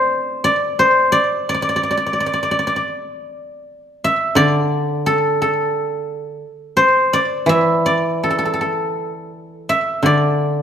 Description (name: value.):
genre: chinese traditional, Chinese solo plucked strings.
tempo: 80-91 BPM.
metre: 2/4.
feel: rubato.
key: D shang mode.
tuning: A4 = 440 Hz.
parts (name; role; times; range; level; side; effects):
guzheng; solo; 0.0-10.6 s; D3 to G5; -16 LUFS; equal; slapback echo.
room: moderate scoring stage reverb, RT60 1.5 s.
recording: none.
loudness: -15 LUFS.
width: side -8 dB against mid.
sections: 0.0-3.3 A section; 3.3-10.6 B section.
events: none.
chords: none.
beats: | 0.43 1.11 | 1.81 2.53 | 3.27 4.00 | 4.71 5.40 | 6.07 6.76 | 7.47 8.21 | 8.95 9.68 | 10.38.